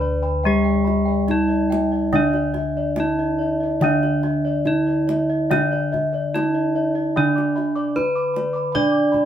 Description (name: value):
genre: Javanese gamelan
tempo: 71-78 BPM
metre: 4/4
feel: straight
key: unclear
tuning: A4 = 440 Hz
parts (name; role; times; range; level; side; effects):
- gamelan-type bronze metallophone; melody; 0.0-9.3 s; D4 to D5; -21 LUFS; right 1 dB; none
- gamelan-type bronze metallophone; accompaniment; 0.0-9.3 s; D3 to D4; -24 LUFS; left 2 dB; none
- gamelan-type bossed gongs; arpeggios; 0.0-9.3 s; D5 to D6; -28 LUFS; left 3 dB; none
- gamelan-type bronze metallophone; arpeggios; 0.0-9.3 s; D5 to D6; -29 LUFS; right 1 dB; none
- gamelan-type bossed gongs; bass; 0.0-9.3 s; D2 to D5; -28 LUFS; right 1 dB; none
- kendang; percussion; 0.9-9.3 s; none; -31 LUFS; right 2 dB; none
room: wet studio reverb, RT60 0.6 s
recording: band playing live in one room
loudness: -18 LUFS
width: side -10 dB against mid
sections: 0.0-9.3 A section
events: none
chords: none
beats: 0.45 1.29 | 2.14 2.98 3.83 4.67 | 5.52 6.36 7.17 7.97 | 8.76